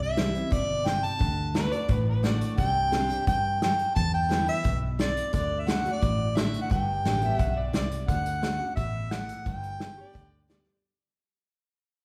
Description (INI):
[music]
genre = honky-tonk and classic country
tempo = 174 BPM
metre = 4/4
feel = straight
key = G major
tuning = A4 = 441 Hz
[part]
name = mellow harmonica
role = melody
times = 0.0-10.5 s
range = D5 to A5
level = -31 LUFS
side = equal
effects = none
[part]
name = picked steel-string acoustic guitar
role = accompaniment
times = 0.0-10.8 s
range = E2 to G4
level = -35 LUFS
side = equal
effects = none
[part]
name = vintage muted fingered electric bass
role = bass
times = 0.0-10.7 s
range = G1 to G2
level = -34 LUFS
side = equal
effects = none
[part]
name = unplugged drum kit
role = drums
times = 0.2-10.7 s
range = hi-hat, kick drum, snare drum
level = -32 LUFS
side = equal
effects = none
[part]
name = clear fiddle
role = second line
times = 1.6-2.5, 7.2-10.7 s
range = B4 to E5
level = -36 LUFS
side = equal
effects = none
[sound]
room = wet recital hall reverb, RT60 1.3 s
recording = recorded in a church or concert hall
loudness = -27 LUFS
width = mono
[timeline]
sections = 0.0-8.1 A section; 8.1-10.8 B section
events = fade-out 8.1-10.8; drum fill 10.7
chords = 0.0 C; 1.2 D; 2.6 Csus2; 4.0 Em7; 5.3 D; 6.7 G; 8.1 D; 9.5 G